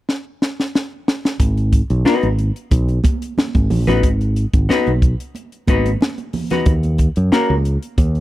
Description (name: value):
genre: funk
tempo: 91 BPM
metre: 4/4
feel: straight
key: G# minor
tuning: A4 = 440 Hz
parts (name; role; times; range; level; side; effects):
- crisp fusion drum kit; drums; 0.1-8.2 s; hi-hat, kick drum, snare drum; -17 LUFS; equal; none
- fingered electric bass; bass; 1.4-8.2 s; G#1 to F#2; -16 LUFS; equal; none
- congas; percussion; 1.4-8.1 s; none; -26 LUFS; right 4 dB; none
- hollow-body jazz guitar; accompaniment; 2.1-7.5 s; A#3 to B4; -18 LUFS; left 3 dB; none
room: studio reverb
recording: dry, close 1970s-style studio recording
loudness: -15 LUFS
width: side -16 dB against mid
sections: 0.0-1.4 A section; 1.4-8.2 B section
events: drum fill 0.1-1.4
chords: 0.0 N.C.; 1.4 G#m7; 6.7 D#m7